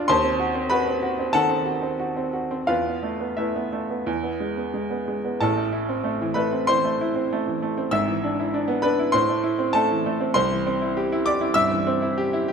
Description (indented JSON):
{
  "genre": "classical, virtuoso piano study",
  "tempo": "84-102 BPM",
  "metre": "4/4",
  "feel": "rubato",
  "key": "A minor",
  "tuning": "A4 = 440 Hz",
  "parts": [
    { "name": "clear baby grand piano", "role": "solo", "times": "0.0-12.5 s", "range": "G#1 to E6", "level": "-21 LUFS", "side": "equal", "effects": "none" }
  ],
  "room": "moderate recital hall reverb, RT60 1.4 s",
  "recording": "close, detailed microphones",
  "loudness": "-21 LUFS",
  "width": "side -6 dB against mid",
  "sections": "0.0-5.4 A section; 5.4-12.5 B section",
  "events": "none",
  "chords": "0.1 D#dim7; 2.7 Esus4; 4.1 E; 5.4 Am; 7.9 E7/G#; 9.1 Am; 10.4 C"
}